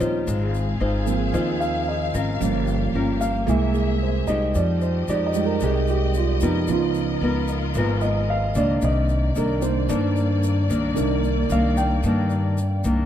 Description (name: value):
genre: bossa nova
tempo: 112 BPM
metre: 4/4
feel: straight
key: C minor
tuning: A4 = 436 Hz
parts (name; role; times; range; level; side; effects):
- dark concert grand piano; accompaniment; 0.0-13.1 s; Db3 to G5; -25 LUFS; right 5 dB; none
- nylon-string guitar; accompaniment; 0.0-13.1 s; G2 to C5; -25 LUFS; left 2 dB; none
- warm studio string section; sustained chords; 0.0-13.1 s; Bb3 to F5; -30 LUFS; left 3 dB; none
- upright bass; bass; 0.0-13.1 s; G1 to G2; -24 LUFS; equal; none
- egg shaker; percussion; 0.0-13.1 s; none; -40 LUFS; left 6 dB; none
room: little or no reverb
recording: dark, warm production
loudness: -20 LUFS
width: side -10 dB against mid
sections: 0.0-13.1 A section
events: grand piano solo 0.0-13.1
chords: 0.3 Ab6; 2.4 Gm7b5; 3.5 C7alt; 4.5 Fm9; 6.7 Db13; 8.8 Cm9